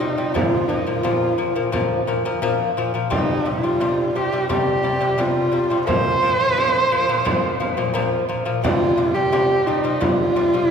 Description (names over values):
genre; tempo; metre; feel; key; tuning
mongolian traditional, Mongolian folk; 87 BPM; 4/4; straight; C yu mode; A4 = 439 Hz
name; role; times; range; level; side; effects
warm horsehead fiddle; melody; 0.0-10.7 s; Eb4 to C5; -20 LUFS; right 1 dB; none
lute; arpeggios; 0.0-10.7 s; Bb2 to G3; -22 LUFS; left 2 dB; none
frame drum; percussion; 0.4-10.6 s; none; -26 LUFS; right 2 dB; none
room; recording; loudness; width
wet church reverb, RT60 3.7 s; recorded in a church or concert hall; -17 LUFS; side -7 dB against mid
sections
0.0-8.6 A section; 8.6-10.7 B section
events
none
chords
0.4 Bb5; 3.1 C5; 5.9 Bb5; 8.6 C5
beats
| 0.35 1.04 1.73 2.42 | 3.12 3.81 4.50 5.19 | 5.88 6.57 7.26 7.95 | 8.64 9.33 10.02